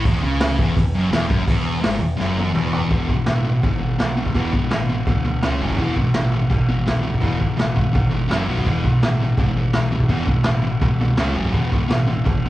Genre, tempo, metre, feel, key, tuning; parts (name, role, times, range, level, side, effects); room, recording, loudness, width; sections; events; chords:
garage rock duo or trio; 167 BPM; 4/4; straight; E major; A4 = 440 Hz
thick fuzz guitar; riff; 0.0-12.5 s; E2 to C#4; -20 LUFS; equal; distortion
growling picked electric bass; bass; 0.0-12.5 s; E1 to D2; -26 LUFS; equal; overdrive
vintage drum kit; drums; 0.1-12.3 s; crash cymbal, hi-hat, kick drum, snare drum, toms; -21 LUFS; equal; vintage 12-bit sampler grit
wet large studio reverb, RT60 0.8 s; band playing live in one room, cassette tape; -17 LUFS; side -15 dB against mid
0.0-2.9 A section; 2.9-12.5 B section
drum fill 2.2-2.9
0.0 N.C.; 2.9 E; 5.4 C#5; 5.6 F#5; 5.8 E; 8.3 F#5; 8.5 B5; 8.7 E; 11.2 C#5; 11.4 F#5; 11.5 E